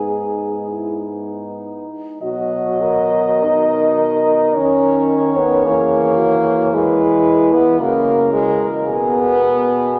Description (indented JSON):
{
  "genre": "classical, lyrical piece for horn quartet",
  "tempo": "48-56 BPM",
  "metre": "3/4",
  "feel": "rubato",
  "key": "B major",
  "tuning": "A4 = 439 Hz",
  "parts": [
    { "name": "clear French horn", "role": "melody", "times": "0.0-9.7 s", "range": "G#4 to D#5", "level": "-22 LUFS", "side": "equal", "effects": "none" },
    { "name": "mellow French horn", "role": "second line", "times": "0.0-10.0 s", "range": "D#4 to A#4", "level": "-23 LUFS", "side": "equal", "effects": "none" },
    { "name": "mellow French horn", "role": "accompaniment", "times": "0.0-10.0 s", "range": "F#3 to D#4", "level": "-20 LUFS", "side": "equal", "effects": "none" },
    { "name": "dark French horn", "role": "bass", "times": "0.0-10.0 s", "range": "G#2 to E3", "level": "-26 LUFS", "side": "equal", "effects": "none" }
  ],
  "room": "wet cathedral reverb, RT60 4.1 s",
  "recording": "none",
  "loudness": "-16 LUFS",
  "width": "mono",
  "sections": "0.0-2.2 A section; 2.2-10.0 B section",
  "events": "none",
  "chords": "0.0 G#m; 2.2 B; 5.7 E; 8.9 G#m/B"
}